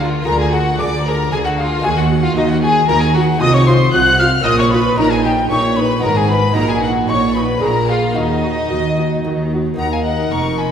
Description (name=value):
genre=classical, baroque-style concerto movement with solo episodes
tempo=114 BPM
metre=3/4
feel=straight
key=Eb minor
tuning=A4 = 442 Hz
part: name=mellow hollow silver concert flute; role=melody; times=0.0-10.7 s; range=Eb5 to Gb6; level=-20 LUFS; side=left 2 dB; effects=none
part: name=warm chamber violin section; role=melody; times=0.0-10.7 s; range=Eb5 to Gb6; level=-23 LUFS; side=left 3 dB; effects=none
part: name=rich chamber violin section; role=second line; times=0.0-10.7 s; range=Eb4 to Gb5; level=-21 LUFS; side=left 3 dB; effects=none
part: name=dark chamber viola section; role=accompaniment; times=0.0-10.7 s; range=Eb4 to Ab4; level=-22 LUFS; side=right 2 dB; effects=none
part: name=lute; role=accompaniment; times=0.0-10.7 s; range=Eb2 to Bb4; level=-24 LUFS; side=right 1 dB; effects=none
part: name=rich chamber cello section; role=bass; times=0.0-10.7 s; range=Eb2 to Eb3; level=-20 LUFS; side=right 3 dB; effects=none
part: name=rich chamber double bass section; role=bass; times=0.0-10.7 s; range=F1 to Eb2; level=-20 LUFS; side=equal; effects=none
room=wet concert hall reverb, RT60 2.4 s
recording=heard from further back in the room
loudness=-13 LUFS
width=side -8 dB against mid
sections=0.0-9.8 A section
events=none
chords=0.3 Bb7/D; 1.8 Ebm; 3.4 F7/C; 4.5 Bbm; 5.0 Eb5/Bb; 6.0 Abm; 6.6 Ebm/Bb; 7.6 Bb7; 8.2 Ebm; 9.8 Eb5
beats=| 0.26 0.79 1.32 | 1.84 2.36 2.89 | 3.41 3.94 4.46 | 4.98 5.50 6.03 | 6.55 7.08 7.62 | 8.15 8.70 9.24 | 9.79 10.32